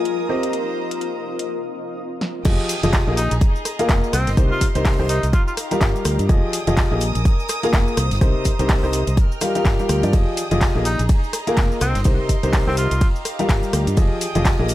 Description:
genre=piano house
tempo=125 BPM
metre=4/4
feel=swing 58% on 16ths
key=F dorian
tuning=A4 = 440 Hz
part: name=clear chamber violin section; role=sustained chords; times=0.0-14.7 s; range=G4 to F6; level=-31 LUFS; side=right 1 dB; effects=sidechain pumping
part: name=clear grand piano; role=riff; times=0.0-14.7 s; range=C3 to F5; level=-23 LUFS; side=left 1 dB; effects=sidechain pumping, digital delay
part: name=granular cloud pad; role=texture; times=0.0-14.7 s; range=F4 to Eb5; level=-31 LUFS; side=left 2 dB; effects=built-in reverb, sidechain pumping
part: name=house drum kit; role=drums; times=0.1-14.7 s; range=crash cymbal, handclaps, hi-hat, ride cymbal, rim click, shaker, snare drum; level=-27 LUFS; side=equal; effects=small room ambience
part: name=tight funk drum kit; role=drums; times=2.4-14.7 s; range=hi-hat, snare drum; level=-37 LUFS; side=left 3 dB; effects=sidechain pumping on hats, high-pass filter on hats, small room ambience, high-pass filter on snare, high-pass filter on room
part: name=fingered electric bass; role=bass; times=2.5-14.7 s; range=F1 to G2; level=-22 LUFS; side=equal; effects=sidechain pumping
part: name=electronic kick drum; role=drums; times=2.5-14.6 s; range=none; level=-18 LUFS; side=equal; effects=small room ambience
part: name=breathy tenor saxophone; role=melody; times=3.2-5.5, 10.9-13.1 s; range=C4 to F4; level=-27 LUFS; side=equal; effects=digital delay
room=small room ambience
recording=none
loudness=-17 LUFS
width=side -14 dB against mid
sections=0.0-2.5 A section; 2.5-14.7 B section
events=break 1.5-2.5; drum fill 2.2; drop 2.5-14.7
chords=0.3 Cm7; 1.5 N.C.; 2.5 Fm9; 3.2 Bb7sus4; 4.1 Cm7; 5.3 Gm7; 6.3 Fm9; 7.0 Bb7sus4; 8.0 Cm7; 9.2 Gm7; 10.1 Fm9; 10.9 Bb7sus4; 11.8 Cm7; 13.0 Gm7; 14.0 Fm9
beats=0.05 | 0.53 1.01 1.49 1.97 | 2.45 2.93 3.41 3.89 | 4.37 4.85 5.33 5.81 | 6.29 6.77 7.25 7.73 | 8.21 8.69 9.17 9.65 | 10.13 10.61 11.09 11.57 | 12.05 12.53 13.01 13.49 | 13.97 14.45

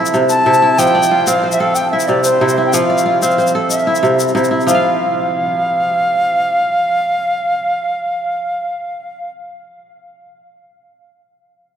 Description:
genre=west african traditional, West African string and xylophone music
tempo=124 BPM (dotted quarters)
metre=12/8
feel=straight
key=unclear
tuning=A4 = 438 Hz
part: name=kora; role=arpeggios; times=0.0-9.5 s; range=C3 to F5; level=-15 LUFS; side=equal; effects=none
part: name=tube shaker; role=percussion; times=0.1-4.8 s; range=none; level=-24 LUFS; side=left 5 dB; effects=none
part: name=bright reedy wooden flute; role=melody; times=0.3-9.3 s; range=C5 to A5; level=-16 LUFS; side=equal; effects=none
room=wet cathedral reverb, RT60 5.3 s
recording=in a vast, echoing space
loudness=-12 LUFS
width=side -8 dB against mid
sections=0.0-4.7 A section; 4.7-8.5 B section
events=none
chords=0.0 C; 0.8 F; 1.8 C; 2.7 F; 3.7 C; 4.7 N.C.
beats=0.30 | 0.78 1.27 1.76 2.24 | 2.73 3.21 3.70 4.18 | 4.67 5.15 5.64 6.12 | 6.61 7.09 7.57 8.05

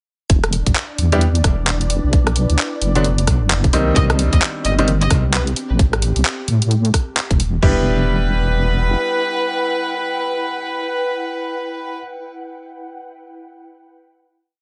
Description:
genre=UK garage, two-step garage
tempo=131 BPM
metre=4/4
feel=swing 60% on 16ths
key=E minor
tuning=A4 = 440 Hz
part: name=soft string machine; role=sustained chords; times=0.6-5.8 s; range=D4 to D5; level=-32 LUFS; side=equal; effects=ensemble chorus, sidechain pumping
part: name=deep soft wobble bass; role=bass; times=0.3-9.0 s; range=E1 to A2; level=-19 LUFS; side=equal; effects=chorus
part: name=garage drum kit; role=drums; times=0.3-7.8 s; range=crash cymbal, kick drum, toms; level=-18 LUFS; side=equal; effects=small room ambience
part: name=garage drum kit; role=drums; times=0.3-7.5 s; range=handclaps, hi-hat, rim click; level=-23 LUFS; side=equal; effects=small room ambience
part: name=ethereal airy pad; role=texture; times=1.7-12.1 s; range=B3 to G5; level=-32 LUFS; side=equal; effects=ensemble chorus, built-in reverb, sidechain pumping
part: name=bright baby grand piano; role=stabs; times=1.1-4.9, 7.6-12.0 s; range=D3 to G4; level=-24 LUFS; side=equal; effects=digital delay
part: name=clear chamber violin section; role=melody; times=4.0-12.0 s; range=B4 to Eb5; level=-25 LUFS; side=equal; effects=digital delay
room=little or no reverb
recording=nothing above 10.9 kHz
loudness=-18 LUFS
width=mono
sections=0.3-7.6 groove; 7.6-11.3 final chord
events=none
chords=0.3 Em7; 2.1 Bm; 3.7 Cm7; 5.6 Am; 7.6 Em7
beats=| 0.30 0.76 1.21 1.67 | 2.13 2.59 3.05 3.50 | 3.96 4.42 4.88 5.34 | 5.79 6.25 6.71 7.17 | 7.63 8.08 8.54 9.00 | 9.46 9.92 10.37 10.83

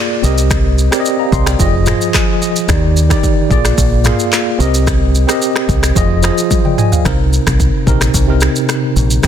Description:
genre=afrobeats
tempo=110 BPM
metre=4/4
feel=straight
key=C minor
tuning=A4 = 440 Hz
part: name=tine electric piano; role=accompaniment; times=0.0-9.3 s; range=C3 to C6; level=-15 LUFS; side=equal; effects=fast stereo tremolo
part: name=deep dub fingered electric bass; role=bass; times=0.2-9.3 s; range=F1 to Eb2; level=-13 LUFS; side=equal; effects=none
part: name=afro-pop drum kit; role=drums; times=0.2-9.3 s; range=finger snaps, handclaps, kick drum, rim click, shaker, toms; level=-15 LUFS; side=equal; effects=soft clipping on snare
room=little or no reverb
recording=dense, heavily limited modern master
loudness=-10 LUFS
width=side -9 dB against mid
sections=0.0-7.1 A section; 7.1-9.3 B section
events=tine electric piano fill 1.9-2.7; drum fill 6.5-7.1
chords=0.2 Cm7; 1.6 Fm7; 2.7 Ebmaj7; 3.5 Bb7; 4.6 Cm7; 6.0 Fm7; 7.1 Cm7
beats=| 0.51 1.05 1.60 2.14 | 2.69 3.23 3.78 4.33 | 4.87 5.42 5.96 6.51 | 7.05 7.60 8.14 8.69 | 9.23

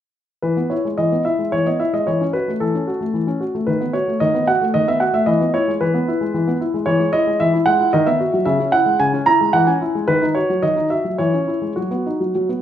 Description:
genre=classical-period piano sonatina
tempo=112 BPM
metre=3/4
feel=rubato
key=E major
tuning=A4 = 440 Hz
part: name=warm concert grand piano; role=solo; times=0.4-12.6 s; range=C#3 to A#5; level=-16 LUFS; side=equal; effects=none
room=moderate recital hall reverb, RT60 1.5 s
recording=recorded in a church or concert hall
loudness=-16 LUFS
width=side -10 dB against mid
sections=0.4-12.6 A section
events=none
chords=0.4 E; 2.1 F#m7/E; 3.7 B7/D#; 5.3 E; 6.9 Emaj13; 7.9 B/D#; 8.5 C#m; 9.5 C#m/E; 10.1 D#m7; 11.2 C#m/E; 11.8 B/F#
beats=| 0.43 0.98 1.53 | 2.08 2.62 3.15 | 3.68 4.22 4.76 | 5.29 5.82 6.35 | 6.88 7.41 7.95 | 8.47 9.01 9.55 | 10.09 10.63 11.19 | 11.76 12.34

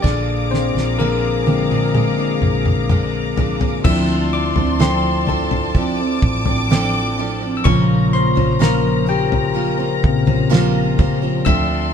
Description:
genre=pop ballad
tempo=63 BPM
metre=4/4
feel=straight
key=unclear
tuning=A4 = 442 Hz
part: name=barky tine electric piano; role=accompaniment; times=0.0-11.9 s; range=Db3 to E6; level=-20 LUFS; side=left 5 dB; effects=none
part: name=warm studio string section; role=sustained chords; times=0.0-11.9 s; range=F3 to D6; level=-25 LUFS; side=left 2 dB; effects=none
part: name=picked steel-string acoustic guitar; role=arpeggios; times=0.0-11.9 s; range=Bb2 to C5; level=-22 LUFS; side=right 6 dB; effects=none
part: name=vintage muted fingered electric bass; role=bass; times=0.0-11.9 s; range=A1 to D2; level=-23 LUFS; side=equal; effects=none
part: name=damped 70s drum kit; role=drums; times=0.0-11.7 s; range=crash cymbal, kick drum, snare drum, toms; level=-18 LUFS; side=equal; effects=none
room=moderate stone room reverb, RT60 0.9 s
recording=band playing live in one room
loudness=-15 LUFS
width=side -8 dB against mid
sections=0.0-3.8 A section; 3.8-11.9 A section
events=tine electric piano solo 0.0-3.8, 3.8-11.9; drum fill 0.0-3.8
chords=0.0 Bb7; 3.8 Dm7; 7.7 Bbmadd9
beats=| 0.04 0.99 1.94 2.90 | 3.85 4.80 5.75 6.71 | 7.66 8.61 9.56 10.52 | 11.47

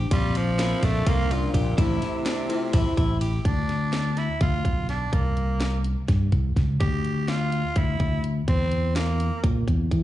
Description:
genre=progressive instrumental, band music in an uneven meter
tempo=251 BPM (eighths)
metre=7/8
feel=straight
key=D minor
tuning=A4 = 440 Hz
part: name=vibraphone with medium mallets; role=second line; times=0.0-3.2 s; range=C4 to F4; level=-31 LUFS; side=left 1 dB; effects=none
part: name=electric guitar at the edge of break-up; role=arpeggios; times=0.0-3.4 s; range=C4 to G4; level=-35 LUFS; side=left 3 dB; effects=slapback echo
part: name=fingered electric bass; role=bass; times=0.0-10.0 s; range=A1 to E3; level=-24 LUFS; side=equal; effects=none
part: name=raspy tenor saxophone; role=melody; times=0.1-9.5 s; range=Bb2 to G4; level=-30 LUFS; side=right 2 dB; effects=slapback echo
part: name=garage drum kit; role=drums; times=0.1-10.0 s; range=hi-hat, kick drum, ride cymbal, snare drum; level=-25 LUFS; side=equal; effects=none
part: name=vintage hollow-body jazz guitar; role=accompaniment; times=0.6-2.8 s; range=A3 to F4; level=-33 LUFS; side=left 2 dB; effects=slapback echo
room=digital ambience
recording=live gig heard through the venue's PA, club reverb, nothing above 10.6 kHz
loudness=-22 LUFS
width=side -14 dB against mid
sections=0.0-3.5 A section; 3.5-10.0 B section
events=none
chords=0.1 Bbsus2; 1.8 Am; 3.5 Dm; 5.1 C5; 6.8 Dmadd9; 8.5 C7/E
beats=| 0.12 0.35 0.59 0.83 1.07 1.31 1.55 | 1.78 2.02 2.26 2.50 2.74 2.98 3.21 | 3.45 3.69 3.93 4.17 4.41 4.65 4.89 | 5.13 5.37 5.61 5.85 6.08 6.33 6.56 | 6.80 7.04 7.28 7.52 7.76 8.00 8.24 | 8.48 8.72 8.96 9.20 9.44 9.67 9.91

